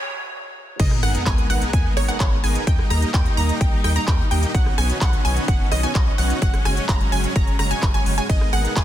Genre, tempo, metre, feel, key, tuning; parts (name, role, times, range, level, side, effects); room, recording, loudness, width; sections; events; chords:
EDM, festival progressive house; 128 BPM; 4/4; straight; G# minor; A4 = 440 Hz
bright concert grand piano; accompaniment; 0.0-0.8 s; F#3 to C#5; -48 LUFS; right 1 dB
noise sweep and sub drop; sound effects; 0.0-2.7 s; -30 LUFS; equal
clear chamber string section; sustained chords; 0.8-8.8 s; D#3 to D#4; -31 LUFS; left 2 dB; sidechain pumping
wide unison pluck; arpeggios; 0.8-8.8 s; C#5 to A#5; -27 LUFS; right 2 dB; sidechain pumping, tape echo
dense compressed supersaw; riff; 0.8-8.8 s; G#3 to A#5; -27 LUFS; right 1 dB; sidechain pumping, tape echo
saturated sub bass; bass; 0.8-8.8 s; F#1 to D#2; -23 LUFS; equal; sidechain pumping
big-room dance drum kit; drums; 0.8-8.8 s; crash cymbal, handclaps, hi-hat, ride cymbal, rim click; -29 LUFS; equal; overdrive, high-pass filter on hats, high-pass filter on cymbals, high-pass filter on snare
electronic kick drum; drums; 0.8-8.8 s; -20 LUFS; equal; overdrive
little or no reverb; dense, heavily limited modern master, high-pass filter; -17 LUFS; side -12 dB against mid
0.8-8.8 A section
break 0.0-0.8; noise sweep 0.0-0.8; drop 0.8-8.8; impact 0.8-2.7
0.0 F#sus2; 0.8 G#madd9; 2.7 D#; 4.5 Badd9; 6.4 F#sus2; 8.3 G#madd9